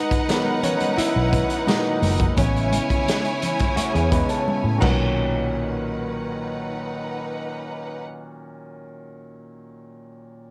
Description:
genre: lush 1970s-style soul.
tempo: 86 BPM.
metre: 4/4.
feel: straight.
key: B major.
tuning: A4 = 440 Hz.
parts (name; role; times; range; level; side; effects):
rich symphonic violin section; second line; 0.0-8.0 s; D#4 to G#5; -29 LUFS; equal; none.
clear concert grand piano; accompaniment; 0.0-10.5 s; A#2 to A#4; -29 LUFS; equal; none.
vintage drum kit; drums; 0.1-5.0 s; crash cymbal, hi-hat, kick drum, snare drum; -27 LUFS; equal; none.
congas; percussion; 0.3-5.5 s; none; -32 LUFS; equal; none.
vintage muted fingered electric bass; bass; 1.0-8.0 s; F#1 to A2; -26 LUFS; equal; transformer saturation.
electric guitar through a small old amp; riff; 3.8-4.8 s; A3 to B4; -29 LUFS; equal; spring reverb.
room: light reverb.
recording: none.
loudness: -22 LUFS.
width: mono.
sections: 0.0-5.2 A section; 5.2-8.0 B section.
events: grand piano solo 0.0-5.2; drum fill 4.5-5.2.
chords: 0.0 Emaj9#11; 2.4 Amaj7; 4.8 Bmaj7.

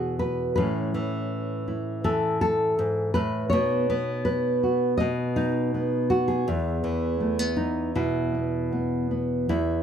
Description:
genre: folk, solo fingerstyle acoustic guitar.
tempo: 81 BPM.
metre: 4/4.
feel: rubato.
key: E major.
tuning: A4 = 440 Hz.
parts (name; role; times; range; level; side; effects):
nylon-string guitar; solo; 0.0-9.8 s; E2 to D#5; -23 LUFS; equal; none.
room: light reverb.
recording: none.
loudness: -23 LUFS.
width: side -8 dB against mid.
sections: 0.0-9.5 A section.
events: none.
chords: 0.0 Eadd9; 0.6 A; 3.5 B; 6.5 E.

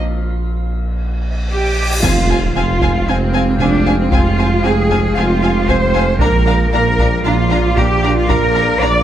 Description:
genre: cinematic, hybrid orchestral and electronic film score.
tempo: 115 BPM.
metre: 4/4.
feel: straight.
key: F dorian.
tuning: A4 = 440 Hz.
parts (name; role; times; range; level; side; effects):
saturated sub bass; bass; 0.0-9.0 s; F1 to Bb1; -20 LUFS; equal; none.
cymbal swell and impact; sound effects; 1.3-4.1 s; none; -21 LUFS; equal; none.
rich symphonic cello section; bass; 1.5-9.0 s; C4 to D5; -16 LUFS; equal; none.
warm symphonic violin section; melody; 2.0-8.9 s; Ab5 to Bb5; -24 LUFS; left 4 dB; none.
rich symphonic violin section; second line; 2.0-8.9 s; F5; -29 LUFS; left 1 dB; none.
rich symphonic viola section; accompaniment; 2.0-8.9 s; C4 to D4; -26 LUFS; right 1 dB; none.
metallic inharmonic drone; sustained chords; 2.5-9.0 s; F3 to G5; -22 LUFS; equal; chorus, built-in reverb.
dark tuba; bass; 2.0-9.0 s; F1 to Bb1; -21 LUFS; right 4 dB; none.
rich symphonic double bass section; bass; 2.0-9.0 s; F1 to Bb1; -21 LUFS; right 3 dB; none.
taiko ensemble; drums; 2.0-8.8 s; none; -21 LUFS; equal; none.
room: light reverb.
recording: none.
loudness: -12 LUFS.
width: side -11 dB against mid.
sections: 0.0-2.0 A section; 2.0-9.0 A section.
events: break 0.0-2.0; drum fill 1.2-2.0; cymbal swell 1.3-2.0; impact 2.0-4.1.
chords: 0.0 Bb5; 2.0 Fmadd9; 6.2 Bb.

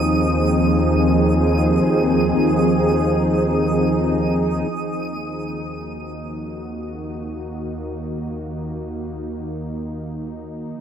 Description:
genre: ambient.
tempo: free time.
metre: none.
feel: none.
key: Eb dorian.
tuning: A4 = 440 Hz.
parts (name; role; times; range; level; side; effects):
warm analog pad; sustained chords; 0.0-10.8 s; Eb3 to Ab4; -20 LUFS; equal; chorus.
clear chamber double bass section; bass; 0.0-10.8 s; Eb2; -25 LUFS; equal; none.
twinkling granular texture; texture; 0.0-4.8 s; Eb6; -30 LUFS; right 1 dB; built-in reverb.
room: wet huge ambient reverb, RT60 7.5 s.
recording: dark, warm production.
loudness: -18 LUFS.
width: side -8 dB against mid.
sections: 0.0-4.7 A section; 4.7-10.8 B section.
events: fade-in on analog synth pad 4.7-10.8; fade-in on double bass section 4.7-10.8.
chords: 0.0 Fm7/Eb; 4.7 Ebm.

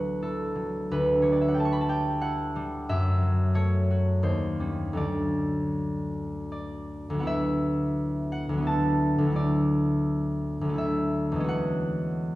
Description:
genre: classical, solo harp piece.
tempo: 77-93 BPM.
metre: 3/4.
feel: rubato.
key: D major.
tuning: A4 = 440 Hz.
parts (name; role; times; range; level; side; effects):
concert harp; solo; 0.0-12.4 s; D2 to C#6; -24 LUFS; equal; none.
room: wet recital hall reverb, RT60 1.7 s.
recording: heard from further back in the room.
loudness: -24 LUFS.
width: side -17 dB against mid.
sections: 0.0-7.3 A section; 7.3-12.4 B section.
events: none.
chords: 0.0 Dadd9; 0.9 Em11/D; 2.9 F#m7; 4.2 Eb7; 5.0 Dmaj7; 7.3 D69; 11.5 E69.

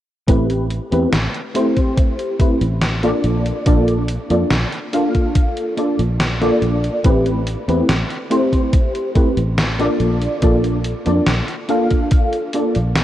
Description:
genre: vaporwave.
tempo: 71 BPM.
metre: 4/4.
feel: straight.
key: A phrygian.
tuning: A4 = 441 Hz.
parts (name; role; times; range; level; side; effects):
mellow FM electric piano; accompaniment; 0.3-12.8 s; A3 to F5; -18 LUFS; equal; ensemble chorus, tape echo.
fingered electric bass; bass; 0.3-13.0 s; A1 to F2; -19 LUFS; equal; none.
electronic kick drum; drums; 0.3-12.3 s; none; -15 LUFS; equal; none.
gated 80s digital drum machine; drums; 0.3-13.0 s; hi-hat, snare drum; -23 LUFS; equal; gated reverb, gated reverb snare.
room: light reverb, digital ambience.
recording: worn, warbling old tape, cassette tape, warbly pitch drift.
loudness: -15 LUFS.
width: side -12 dB against mid.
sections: 0.3-13.0 A section.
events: none.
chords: 0.3 Am9; 3.2 Bbmaj7; 7.0 Am9; 10.0 Bbmaj7.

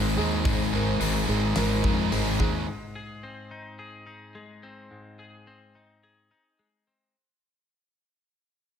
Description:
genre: post-rock.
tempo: 108 BPM.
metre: 4/4.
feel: straight.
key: unclear.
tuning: A4 = 444 Hz.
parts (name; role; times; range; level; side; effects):
dark studio string section; sustained chords; 0.0-2.6 s; Eb4 to Ab5; -41 LUFS; equal; none.
crunchy overdriven guitar; riff; 0.0-2.7 s; Ab2 to Ab3; -28 LUFS; left 13 dB; none.
overdriven electric guitar; riff; 0.0-2.7 s; Ab2 to Eb4; -29 LUFS; right 11 dB; spring reverb.
fuzz fingered electric bass; bass; 0.0-2.7 s; Ab1 to F2; -28 LUFS; equal; overdrive.
felt-muted upright piano; arpeggios; 0.2-2.7 s; Ab4 to Bb4; -36 LUFS; right 4 dB; slapback echo.
huge arena drum kit; drums; 0.5-2.5 s; hi-hat, kick drum, snare drum; -30 LUFS; equal; none.
twelve-string electric guitar; arpeggios; 2.7-7.1 s; Ab2 to Ab4; -42 LUFS; left 2 dB; spring reverb, slapback echo.
room: light reverb, small room ambience.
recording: none.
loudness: -22 LUFS.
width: side -8 dB against mid.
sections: 0.0-2.7 A section; 2.7-7.1 B section.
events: fade-out 2.7-7.1.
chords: 0.0 Ab.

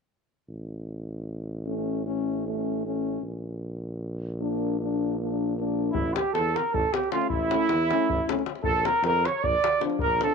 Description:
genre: balkan folk, Balkan brass band.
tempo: 309 BPM (eighths).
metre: 7/8.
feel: straight.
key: A phrygian dominant.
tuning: A4 = 438 Hz.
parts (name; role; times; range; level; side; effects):
warm tuba; bass; 0.5-10.2 s; A1 to F2; -32 LUFS; equal; none.
warm French horn; accompaniment; 1.7-10.3 s; C#4 to D4; -30 LUFS; left 12 dB; none.
warm euphonium; accompaniment; 1.7-10.3 s; F3 to Bb3; -34 LUFS; right 14 dB; none.
warm flugelhorn; melody; 5.9-10.3 s; E4 to D5; -26 LUFS; left 1 dB; none.
davul; percussion; 5.9-10.3 s; none; -31 LUFS; left 6 dB; none.
mellow trumpet; second line; 6.0-10.3 s; E4 to D5; -27 LUFS; right 13 dB; none.
room: light reverb.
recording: 1960s-style stereo with parts hard left and right.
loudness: -24 LUFS.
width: side -5 dB against mid.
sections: 0.5-5.9 A section; 5.9-10.3 B section.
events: none.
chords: 0.5 A; 3.2 Bb; 5.9 A; 8.6 Bb.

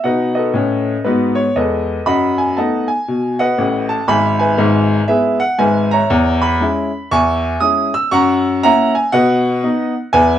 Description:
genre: jazz, stride piano.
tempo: 119 BPM.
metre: 4/4.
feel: swing 63% on 8ths.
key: E major, B major from 6.1 s.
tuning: A4 = 440 Hz.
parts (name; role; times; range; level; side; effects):
clear upright piano; solo; 0.0-10.4 s; G#1 to E6; -13 LUFS; equal; none.
room: moderate studio reverb, RT60 0.6 s.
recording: dark, warm production.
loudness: -13 LUFS.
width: side -10 dB against mid.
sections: 0.0-10.4 A section.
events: none.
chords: 0.0 B7; 2.1 B7/F#; 4.1 E/G#; 6.1 C#m/E; 8.1 F#7; 9.1 B.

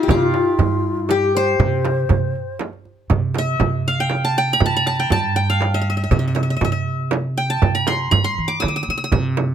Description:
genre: Arabic maqam ensemble.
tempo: 120 BPM.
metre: 3/4.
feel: straight.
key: C maqam rast.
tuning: A4 = 442 Hz.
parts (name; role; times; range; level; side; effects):
qanun; melody; 0.0-9.5 s; E4-50c to E6-50c; -20 LUFS; left 1 dB; none.
breathy reedy low ney; second line; 0.0-2.6 s; E4-47c to D5; -24 LUFS; left 4 dB; none.
upright bass; bass; 0.1-9.5 s; G2 to E3-50c; -22 LUFS; right 1 dB; none.
darbuka; percussion; 0.1-9.5 s; none; -23 LUFS; right 4 dB; none.
frame drum; percussion; 0.1-9.5 s; none; -24 LUFS; right 5 dB; none.
room: light reverb.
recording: close, detailed microphones.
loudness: -16 LUFS.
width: side -9 dB against mid.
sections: 0.0-3.1 A section; 3.1-9.5 B section.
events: none.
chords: none.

